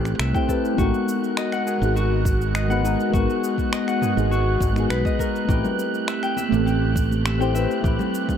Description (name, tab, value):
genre	sunset chillout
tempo	102 BPM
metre	4/4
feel	straight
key	unclear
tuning	A4 = 440 Hz
part	mellow FM electric piano	accompaniment	0.0-8.4 s	G#3 to C5	-25 LUFS	moving between left 5 dB and right 5 dB	chorus, phaser, auto-pan, tape echo
part	airy breathy pad	sustained chords	0.0-8.4 s	G#3 to A#4	-29 LUFS	right 1 dB	chorus
part	concert harp	arpeggios	0.0-8.4 s	F#4 to G5	-28 LUFS	left 5 dB	tape echo
part	fingered electric bass	bass	0.0-8.0 s	G#1 to C2	-23 LUFS	equal	none
part	wind-like tuned noise texture	texture	0.0-8.4 s	F#6	-33 LUFS	right 6 dB	built-in reverb
part	deep house drum kit	drums	0.1-8.4 s	finger snaps, shaker, toms	-31 LUFS	right 1 dB	studio reverb
part	electronic kick drum	drums	0.3-8.4 s	none	-24 LUFS	equal	studio reverb
part	congas	percussion	5.6-8.4 s	none	-31 LUFS	left 1 dB	none
room	light reverb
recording	dark, warm production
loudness	-19 LUFS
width	side -8 dB against mid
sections	0.0-8.4 A section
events	none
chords	0.0 Am9; 0.8 G#m9; 5.5 Am9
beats	0.19 | 0.78 1.37 1.96 2.55 | 3.13 3.72 4.31 4.90 | 5.49 6.08 6.66 7.25 | 7.84